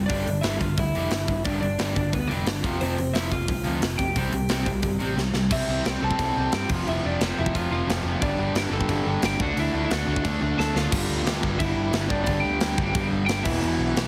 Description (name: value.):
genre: punk rock.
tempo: 177 BPM.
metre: 4/4.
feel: straight.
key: unclear.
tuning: A4 = 439 Hz.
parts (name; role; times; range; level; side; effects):
overdriven electric guitar; riff; 0.0-14.1 s; E2 to D4; -32 LUFS; equal; none.
overdriven semi-hollow guitar; riff; 0.0-14.1 s; E2 to D4; -32 LUFS; equal; none.
picked electric bass; bass; 0.0-14.1 s; E1 to G2; -32 LUFS; equal; none.
lightly driven lead guitar; melody; 0.1-14.1 s; B3 to A5; -31 LUFS; equal; none.
big rock drum kit; drums; 0.1-14.1 s; crash cymbal, hi-hat, kick drum, snare drum; -30 LUFS; equal; none.
room: little or no reverb.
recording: heavily compressed radio sound, multiband compression.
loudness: -25 LUFS.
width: mono.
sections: 0.0-5.5 A section; 5.5-10.9 B section; 10.9-14.1 C section.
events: drum fill 5.2-5.5, 10.6-10.9.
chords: 0.1 G5; 2.6 F5; 4.2 C5; 5.5 C; 6.7 F5; 8.2 G5; 9.4 D; 10.9 G5; 13.5 E5.